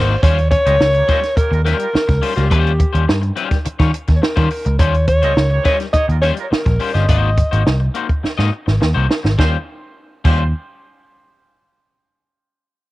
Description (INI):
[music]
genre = funk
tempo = 105 BPM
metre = 4/4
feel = straight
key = Eb mixolydian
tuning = A4 = 441 Hz
[part]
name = breathy alto saxophone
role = melody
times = 0.0-7.8 s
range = G4 to Eb5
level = -19 LUFS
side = equal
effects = cassette tape
[part]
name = electric guitar at the edge of break-up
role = accompaniment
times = 0.0-10.4 s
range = G3 to Eb5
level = -23 LUFS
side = left 7 dB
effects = cassette tape
[part]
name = vintage muted picked electric bass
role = bass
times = 0.0-10.5 s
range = G1 to Eb3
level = -16 LUFS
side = equal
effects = none
[part]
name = compact cocktail drum kit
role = drums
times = 0.2-10.4 s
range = crash cymbal, hi-hat, kick drum, snare drum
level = -17 LUFS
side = right 1 dB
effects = cassette tape
[part]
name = clear horn section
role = second line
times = 0.7-10.5 s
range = G3 to Eb5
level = -29 LUFS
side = right 9 dB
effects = cassette tape
[sound]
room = small room ambience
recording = home recording on cassette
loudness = -13 LUFS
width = side -18 dB against mid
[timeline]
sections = 0.2-9.4 A section; 9.4-11.7 B section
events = band accent 0.0; drum fill 8.2-9.4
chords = 0.2 Eb13; 7.1 Ab9; 9.4 Eb13